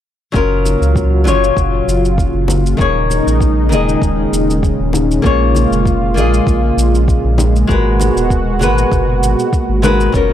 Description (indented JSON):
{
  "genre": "sunset chillout",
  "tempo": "98 BPM",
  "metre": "4/4",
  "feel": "swing 54% on 16ths",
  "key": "G# dorian",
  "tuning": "A4 = 439 Hz",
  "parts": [
    { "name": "flamenco guitar", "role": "accompaniment", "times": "0.3-10.3 s", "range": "D#3 to D#5", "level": "-17 LUFS", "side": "moving between left 6 dB and right 1 dB", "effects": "auto-pan, tape echo" },
    { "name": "lush unison pad", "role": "sustained chords", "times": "0.3-10.3 s", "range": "A#2 to F#4", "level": "-17 LUFS", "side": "right 1 dB", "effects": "chorus" },
    { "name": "warm sub bass", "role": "bass", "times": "0.3-10.3 s", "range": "D#1 to C#2", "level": "-15 LUFS", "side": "equal", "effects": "none" },
    { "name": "electronic kick drum", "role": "drums", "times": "0.3-10.3 s", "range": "none", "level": "-16 LUFS", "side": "equal", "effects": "overdrive" },
    { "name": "shaker", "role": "drums", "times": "0.4-10.3 s", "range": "none", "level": "-27 LUFS", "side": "equal", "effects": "none" },
    { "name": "congas", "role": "percussion", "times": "0.7-10.0 s", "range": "none", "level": "-22 LUFS", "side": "left 3 dB", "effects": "none" }
  ],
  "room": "small room ambience",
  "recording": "dry, gritty hardware recording",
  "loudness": "-11 LUFS",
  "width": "side -11 dB against mid",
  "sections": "0.3-10.3 A section",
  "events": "none",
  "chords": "0.3 F#maj7; 2.8 D#7sus4; 5.2 A#m7; 7.7 G#m9"
}